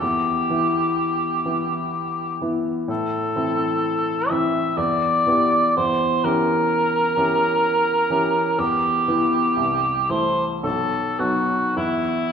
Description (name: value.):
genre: classical, romantic duo for cor anglais and grand piano.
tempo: 51-65 BPM.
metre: 3/4.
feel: rubato.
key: E minor.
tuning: A4 = 441 Hz.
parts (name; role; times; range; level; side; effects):
mellow cor anglais; melody; 0.0-12.3 s; E4 to E5; -20 LUFS; right 1 dB; none.
clear baby grand piano; accompaniment; 0.0-12.3 s; B1 to G4; -23 LUFS; left 2 dB; none.
room: wet recital hall reverb, RT60 1.5 s.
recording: heard from further back in the room.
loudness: -18 LUFS.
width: side -7 dB against mid.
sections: 0.0-12.3 A section.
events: none.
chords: 0.0 Em; 2.9 Am; 4.8 Em; 5.8 Edim7; 8.6 Em; 9.6 Am/C; 10.6 B7; 11.8 N.C..